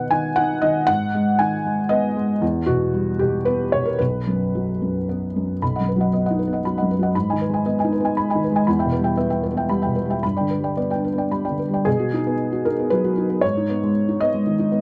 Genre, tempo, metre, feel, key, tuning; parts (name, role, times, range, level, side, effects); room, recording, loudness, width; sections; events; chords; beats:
neoclassical minimalist piano; 116 BPM; 3/4; rubato; B major; A4 = 440 Hz
felt-muted upright piano; solo; 0.0-14.8 s; B1 to B5; -21 LUFS; equal
little or no reverb; dry, close 1970s-style studio recording; -21 LUFS; mono
0.0-5.6 A section; 5.6-11.9 B section; 11.9-14.8 C section
0.0 B; 0.9 G#m; 2.4 Em; 4.0 B5; 5.6 B; 7.1 G#m; 8.7 Em; 10.2 G; 11.9 B; 13.4 G#m
0.37 | 0.88 1.39 1.90 | 2.42 2.94 3.46 | 3.99 4.54 5.08 | 5.61 6.12 6.64 | 7.15 7.66 8.16 | 8.67 9.18 9.70 | 10.23 10.78 11.32 | 11.87 12.39 12.91 | 13.43 13.95 14.46